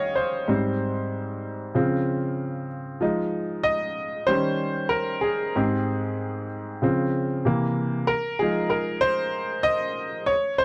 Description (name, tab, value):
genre	soul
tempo	95 BPM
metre	4/4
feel	straight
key	unclear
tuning	A4 = 441 Hz
part	clear grand piano	solo	0.0-10.6 s	Ab2 to F5	-25 LUFS	equal	none
room	light reverb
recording	dry, close 1970s-style studio recording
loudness	-25 LUFS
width	mono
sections	0.0-8.1 A section; 8.1-10.6 B section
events	grand piano solo 0.0-8.1, 8.1-10.6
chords	0.5 Abmaj7; 1.8 Dbmaj7; 3.0 Fm7; 4.3 Eb7; 5.6 Abmaj7; 6.8 Dbmaj7; 7.5 C7; 8.1 Fm7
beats	| 0.49 1.12 1.75 2.39 | 3.02 3.65 4.29 4.92 | 5.55 6.19 6.82 7.45 | 8.09 8.72 9.35 9.98 | 10.62